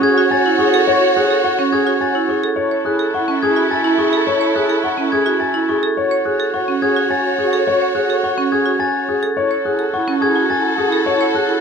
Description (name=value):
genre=classical, minimalist pattern music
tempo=106 BPM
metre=3/4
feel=straight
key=F# minor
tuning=A4 = 439 Hz
part: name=dark baby grand piano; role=melody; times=0.0-11.5 s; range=G#4 to G#5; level=-19 LUFS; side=left 6 dB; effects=none
part: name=warm symphonic string section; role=sustained chords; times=0.0-11.6 s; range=E4 to C#5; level=-21 LUFS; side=right 1 dB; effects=none
part: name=glockenspiel with soft plastic mallets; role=arpeggios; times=0.0-11.5 s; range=C#6 to A6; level=-21 LUFS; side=left 1 dB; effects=none
part: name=marimba with medium hard mallets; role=arpeggios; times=0.0-11.6 s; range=C#4 to C#5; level=-20 LUFS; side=right 6 dB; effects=none
part: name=dark clarinet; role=second line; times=0.1-11.6 s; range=E4 to F#4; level=-24 LUFS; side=right 5 dB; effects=none
room=light reverb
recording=close, detailed microphones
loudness=-14 LUFS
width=side -6 dB against mid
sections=0.0-11.6 A section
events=none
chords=0.0 F#m7; 6.0 A6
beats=0.31 | 0.88 1.44 2.01 | 2.57 3.14 3.71 | 4.27 4.84 5.40 | 5.97 6.54 7.10 | 7.67 8.23 8.80 | 9.37 9.93 10.50 | 11.06